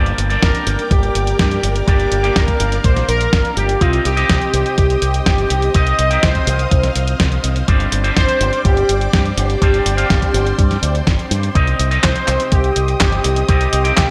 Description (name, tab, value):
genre	italo disco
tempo	124 BPM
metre	4/4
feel	straight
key	C minor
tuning	A4 = 442 Hz
part	string machine, full ensemble	sustained chords	0.0-14.1 s	Bb4 to Eb6	-29 LUFS	equal	ensemble chorus
part	electric guitar with an envelope filter	stabs	0.0-14.1 s	G2 to G5	-26 LUFS	equal	subtle chorus
part	fingered electric bass with an envelope filter	bass	0.0-14.1 s	G1 to G2	-21 LUFS	equal	none
part	clean 12-bit digital drum machine	drums	0.1-14.1 s	handclaps, hi-hat, snare drum	-23 LUFS	equal	gated reverb
part	analog synth brass	melody	0.4-14.1 s	F4 to Eb5	-22 LUFS	equal	chorus, digital delay
part	electronic kick drum	drums	0.4-14.1 s	none	-18 LUFS	equal	none
room	light reverb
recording	faint mains hum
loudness	-15 LUFS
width	mono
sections	0.0-14.1 A section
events	none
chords	0.0 Gm; 3.8 Cm; 7.7 Gsus4; 11.6 Cm